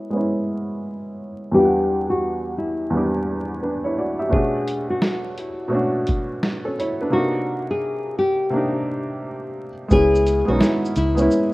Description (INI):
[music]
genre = lo-fi hip hop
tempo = 86 BPM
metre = 4/4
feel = swing 63% on 16ths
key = unclear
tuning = A4 = 435 Hz
[part]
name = nylon-string guitar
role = melody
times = 0.0-11.5 s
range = E4 to G#4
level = -21 LUFS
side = left 1 dB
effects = low-pass filter
[part]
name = felt-muted upright piano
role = accompaniment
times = 0.0-11.5 s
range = E2 to F#5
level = -22 LUFS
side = right 1 dB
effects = cassette tape, low-pass filter
[part]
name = lo-fi sampler-style drum kit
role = drums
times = 4.3-11.5 s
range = hi-hat, kick drum, shaker, snare drum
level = -23 LUFS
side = equal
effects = vintage 12-bit sampler grit
[part]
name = vintage muted fingered electric bass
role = bass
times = 9.9-11.3 s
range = B1 to C#2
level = -22 LUFS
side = equal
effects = none
[sound]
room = light reverb, digital ambience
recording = rough home demo mix, vinyl crackle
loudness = -19 LUFS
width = side -20 dB against mid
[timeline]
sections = 0.0-9.9 A section; 9.9-11.5 B section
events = filter sweep 0.0-9.9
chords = 0.0 C#m7; 1.5 Em7; 4.3 Bm7; 7.1 Cm7; 9.9 C#m7